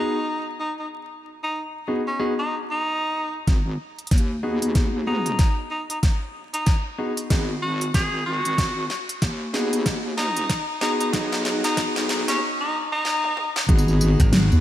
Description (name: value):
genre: glitch hop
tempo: 94 BPM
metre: 4/4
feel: swing 60% on 16ths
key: G# minor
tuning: A4 = 438 Hz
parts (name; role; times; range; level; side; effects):
- bright tenor saxophone; melody; 0.0-13.6 s; C#4 to G#4; -27 LUFS; equal; ping-pong delay
- clear grand piano; stabs; 0.0-14.6 s; B3 to G#4; -27 LUFS; left 1 dB; sidechain pumping, low-pass filter, ping-pong delay
- wobble bass; bass; 3.5-14.6 s; G#1 to D#2; -25 LUFS; equal; chorus, high-pass filter
- electronic kick drum; drums; 3.5-14.3 s; none; -20 LUFS; equal; none
- pop drum kit; drums; 3.5-14.6 s; hi-hat, snare drum, tambourine, toms; -28 LUFS; equal; high-pass filter on snare, low-pass filter on snare, high-pass filter on hats, low-pass filter on hats, high-pass filter on toms, low-pass filter on toms, high-pass filter on perc, low-pass filter on perc, gated reverb
- glassy slap bass; bass; 14.2-14.5 s; G#1; -19 LUFS; equal; none
room: moderate plate reverb, RT60 2.7 s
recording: bright 1980s-style digital production, vinyl crackle, high-pass filter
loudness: -21 LUFS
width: side -12 dB against mid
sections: 0.0-3.5 A section; 3.5-13.7 B section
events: build-up 3.5-13.7; drum fill 3.5-12.4, 13.0-13.7; filter sweep 3.5-13.7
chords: 0.0 G#m7